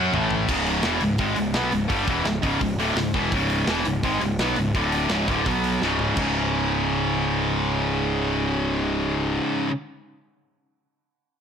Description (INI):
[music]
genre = heavy metal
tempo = 168 BPM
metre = 4/4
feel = straight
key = C# minor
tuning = A4 = 439 Hz
[part]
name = high-gain distorted guitar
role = riff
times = 0.0-9.7 s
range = C#2 to F#4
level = -22 LUFS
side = equal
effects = distortion
[part]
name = fuzz picked electric bass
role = bass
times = 0.0-9.4 s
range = C#1 to F#2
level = -28 LUFS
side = equal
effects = overdrive, transformer saturation
[part]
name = tight metal drum kit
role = drums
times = 0.1-6.3 s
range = crash cymbal, hi-hat, kick drum, snare drum, toms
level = -29 LUFS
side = equal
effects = none
[sound]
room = light reverb, small room ambience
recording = blown-out, overdriven recording, overdrive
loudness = -21 LUFS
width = side -7 dB against mid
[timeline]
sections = 0.5-6.2 A section; 6.2-9.0 B section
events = drum fill 0.0-0.5, 5.8-6.2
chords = 0.1 A5; 0.5 C#m; 4.7 D5; 5.1 C#5; 5.5 B5; 5.8 C#5